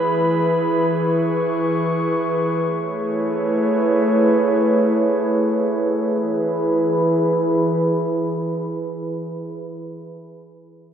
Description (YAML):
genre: hip hop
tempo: free time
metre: none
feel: none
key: E major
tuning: A4 = 441 Hz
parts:
  - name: airy breathy pad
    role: sustained chords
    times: 0.0-9.6 s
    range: E3 to C#6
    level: -18 LUFS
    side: equal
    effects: chorus, low-pass filter
room: moderate lush hall reverb, RT60 2.3 s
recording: rough home demo mix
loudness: -17 LUFS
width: side -8 dB against mid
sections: 0.0-6.1 A section; 6.1-9.6 B section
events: filter sweep on analog synth pad 0.0-6.1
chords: 0.0 E; 2.6 Amaj7; 6.1 E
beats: free time